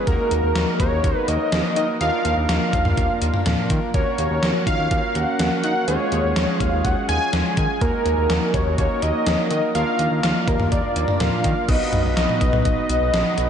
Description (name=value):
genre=synth-pop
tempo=124 BPM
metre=4/4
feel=straight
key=Eb minor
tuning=A4 = 441 Hz
part: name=wide unison lead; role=melody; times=0.0-13.5 s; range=Bb4 to Ab5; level=-22 LUFS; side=equal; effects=tape echo
part: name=analog synth brass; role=accompaniment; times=0.0-13.5 s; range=Ab3 to B4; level=-25 LUFS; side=right 2 dB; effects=chorus
part: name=smooth synth bass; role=bass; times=0.1-13.5 s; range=Bb1 to Eb3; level=-24 LUFS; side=equal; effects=none
part: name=gated 80s digital drum machine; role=drums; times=0.1-13.5 s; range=crash cymbal, hi-hat, kick drum, snare drum, toms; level=-23 LUFS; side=equal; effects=gated reverb, gated reverb snare, overdrive
room=wet cathedral reverb, RT60 4.9 s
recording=dreamy mix soaked in reverb, nothing above 10.5 kHz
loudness=-18 LUFS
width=side -8 dB against mid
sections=0.0-11.7 A section; 11.7-13.5 B section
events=none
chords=0.1 Ebm; 2.0 Bb/Eb; 3.9 Gb/Eb; 5.9 Db/Eb; 7.8 Ebm; 9.8 Bb/Eb; 11.7 B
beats=| 0.07 0.56 1.04 1.52 | 2.01 2.49 2.98 3.46 | 3.94 4.43 4.91 5.39 | 5.88 6.36 6.85 7.33 | 7.81 8.30 8.78 9.27 | 9.75 10.23 10.72 11.20 | 11.69 12.17 12.65 13.14